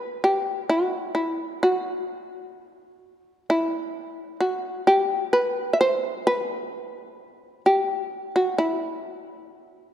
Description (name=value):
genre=japanese traditional, Japanese chamber music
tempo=65 BPM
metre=4/4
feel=rubato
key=E hirajoshi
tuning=A4 = 439 Hz
part: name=shamisen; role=solo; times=0.0-9.9 s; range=E4 to E5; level=-22 LUFS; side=equal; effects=none
room=wet church reverb, RT60 2.8 s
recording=dark, warm production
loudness=-22 LUFS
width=side -10 dB against mid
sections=0.0-9.9 A section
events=none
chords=none